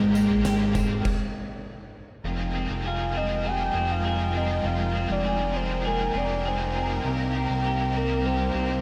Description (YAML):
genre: dream pop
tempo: 100 BPM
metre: 4/4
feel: straight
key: unclear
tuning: A4 = 435 Hz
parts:
  - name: soft octave-layered synth lead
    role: melody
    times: 0.0-8.8 s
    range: Ab3 to G5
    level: -30 LUFS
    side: equal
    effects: chorus, tape echo
  - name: overdriven electric guitar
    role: accompaniment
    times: 0.0-8.8 s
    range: F2 to Ab4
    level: -38 LUFS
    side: equal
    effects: tremolo, ensemble chorus
  - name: warm studio string section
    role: sustained chords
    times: 0.0-8.8 s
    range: G3 to Bb5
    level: -35 LUFS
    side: equal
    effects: none
  - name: semi-hollow electric guitar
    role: arpeggios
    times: 0.0-8.8 s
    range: F2 to Ab4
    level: -32 LUFS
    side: equal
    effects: lush chorus, tape echo
  - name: fat analog bass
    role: bass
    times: 0.0-8.8 s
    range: F1 to C2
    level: -32 LUFS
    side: equal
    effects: none
  - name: oversized low-tuned drum kit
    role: drums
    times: 0.2-1.2 s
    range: crash cymbal, kick drum, snare drum, tambourine, toms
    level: -33 LUFS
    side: equal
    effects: none
room: moderate scoring stage reverb, RT60 2.0 s, small room ambience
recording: none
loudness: -26 LUFS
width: mono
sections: 0.0-2.2 A section; 2.2-8.8 B section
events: stop 1.1-2.2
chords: 0.0 Abmaj9; 2.2 Fm11; 7.0 Cm7